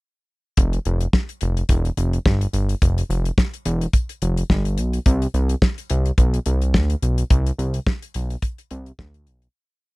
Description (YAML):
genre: early-eighties boogie funk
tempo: 107 BPM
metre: 4/4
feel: swing 56% on 16ths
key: unclear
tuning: A4 = 441 Hz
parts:
  - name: fat analog bass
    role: bass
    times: 0.6-9.5 s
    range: E1 to D2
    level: -20 LUFS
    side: equal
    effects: none
  - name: damped 70s drum kit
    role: drums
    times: 0.6-9.5 s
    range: hi-hat, kick drum, snare drum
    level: -19 LUFS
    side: equal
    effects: none
room: little or no reverb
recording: dry, close 1970s-style studio recording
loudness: -18 LUFS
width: side -24 dB against mid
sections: 0.6-9.5 breakdown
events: fade-out 7.3-9.5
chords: none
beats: | 0.58 1.14 1.70 2.26 | 2.82 3.38 3.94 4.50 | 5.06 5.62 6.18 6.74 | 7.30 7.87 8.43 8.99